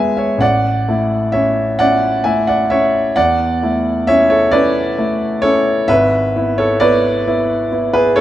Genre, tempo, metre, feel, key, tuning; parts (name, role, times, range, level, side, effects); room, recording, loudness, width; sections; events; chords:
classical, romantic nocturne for solo piano; 44 BPM (dotted quarters); 12/8; rubato; A4 = 438 Hz
warm grand piano; solo; 0.0-8.2 s; G#1 to A5; -12 LUFS; equal
light reverb; close, detailed microphones; -12 LUFS; side -13 dB against mid
0.4-8.2 A section
0.4 A; 5.9 E7/G#